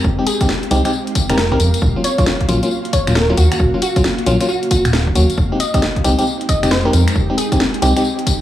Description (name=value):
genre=UK garage, two-step garage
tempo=135 BPM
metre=4/4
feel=swing 64% on 16ths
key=unclear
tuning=A4 = 439 Hz
part: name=ethereal airy pad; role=sustained chords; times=0.0-8.4 s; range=Ab3 to F5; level=-25 LUFS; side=left 1 dB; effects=ensemble chorus, built-in reverb, tremolo, sidechain pumping
part: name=organ-like FM bass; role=bass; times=0.0-7.9 s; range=Eb1 to F2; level=-16 LUFS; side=equal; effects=sidechain pumping
part: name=electronic kick drum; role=drums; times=0.0-8.4 s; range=none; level=-18 LUFS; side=equal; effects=none
part: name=house drum kit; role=drums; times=0.0-8.4 s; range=finger snaps, hi-hat, snare drum, tambourine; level=-21 LUFS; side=left 1 dB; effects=none
part: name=FM electric piano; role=stabs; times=0.2-8.0 s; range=Gb3 to G4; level=-20 LUFS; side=left 1 dB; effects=chorus, tape echo
part: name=glassy wavetable pluck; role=melody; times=0.3-7.5 s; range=Gb4 to Eb5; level=-22 LUFS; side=equal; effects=chorus, tape echo
room=light reverb, digital ambience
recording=small room ambience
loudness=-13 LUFS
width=side -13 dB against mid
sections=0.0-8.4 A section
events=none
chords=0.0 Fm9; 1.8 Ebm9; 5.4 Fm9